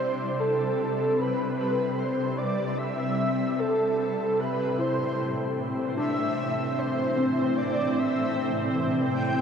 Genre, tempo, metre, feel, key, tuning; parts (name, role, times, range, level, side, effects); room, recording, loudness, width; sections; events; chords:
ambient; 75 BPM; 4/4; straight; C major; A4 = 440 Hz
breathy flute-like synth lead; melody; 0.0-9.4 s; A4 to G5; -27 LUFS; right 1 dB; ensemble chorus, diffuse ambient delay
shimmering ambient pad; sustained chords; 0.0-9.4 s; A2 to E4; -30 LUFS; equal; chorus, built-in reverb
felt-muted upright piano; arpeggios; 0.0-9.4 s; C4 to B5; -33 LUFS; left 2 dB; diffuse ambient delay
organ-like drone; drone; 0.0-9.4 s; C3 to C4; -31 LUFS; left 1 dB; ensemble chorus, built-in reverb
wet huge ambient reverb, RT60 8.6 s; dark, warm production; -24 LUFS; side -7 dB against mid
0.0-9.4 A section
fade-in on ambient pad 0.0-9.4; fade-in on felt piano 0.0-9.4
0.0 Cmaj7; 4.4 Am